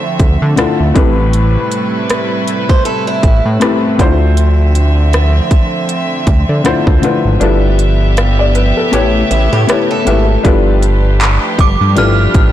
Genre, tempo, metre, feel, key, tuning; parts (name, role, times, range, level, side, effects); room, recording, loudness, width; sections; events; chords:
contemporary R&B; 79 BPM; 4/4; swing 58% on 16ths; D dorian; A4 = 440 Hz
felt-muted upright piano; accompaniment; 0.0-12.5 s; A2 to F5; -16 LUFS; left 4 dB
warm studio string section; sustained chords; 0.0-12.5 s; C3 to E5; -18 LUFS; right 2 dB; sidechain pumping
fat analog bass; bass; 0.2-12.5 s; G1 to D3; -12 LUFS; right 1 dB
trap drum kit; drums; 0.2-12.5 s; handclaps, hi-hat, kick drum, rim click; -14 LUFS; equal
picked acoustic archtop guitar; arpeggios; 2.7-4.0, 9.3-10.4 s; E4 to C5; -20 LUFS; right 2 dB; digital delay
synth chime; melody; 11.6-12.5 s; D6 to F6; -15 LUFS; right 6 dB; ensemble chorus
light reverb, small room ambience; blown-out, overdriven recording, overdrive; -9 LUFS; side -12 dB against mid
0.0-10.4 A section; 10.4-12.5 B section
kick muted 7.4-10.4
0.0 Dm9; 1.0 Am9; 4.0 Dm9; 7.4 G13; 8.9 A9; 10.4 G13